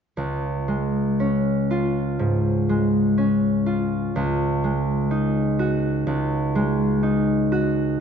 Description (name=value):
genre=classical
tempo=62 BPM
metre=4/4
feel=rubato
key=Db major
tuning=A4 = 440 Hz
part: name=concert harp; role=accompaniment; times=0.2-8.0 s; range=Db2 to Gb4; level=-20 LUFS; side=equal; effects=none
room=moderate scoring stage reverb, RT60 1.6 s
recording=dark, warm production, nothing above 7.5 kHz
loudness=-20 LUFS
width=side -7 dB against mid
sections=0.2-8.0 A section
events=none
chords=0.2 Db; 4.2 Ab7sus4/Db